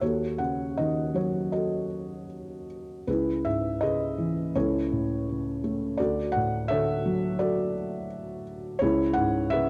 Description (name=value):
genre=classical, lyrical solo piano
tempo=76-85 BPM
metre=4/4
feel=rubato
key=unclear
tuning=A4 = 440 Hz
part: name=felt-muted upright piano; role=solo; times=0.0-9.7 s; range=C#2 to F#5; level=-28 LUFS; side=equal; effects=none
room=moderate plate reverb, RT60 3.3 s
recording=dark, warm production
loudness=-28 LUFS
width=mono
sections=0.0-9.7 A section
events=none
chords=0.0 D#m7b5; 3.1 C#m7; 4.6 A/C#; 6.0 Dmaj7; 8.8 C#m7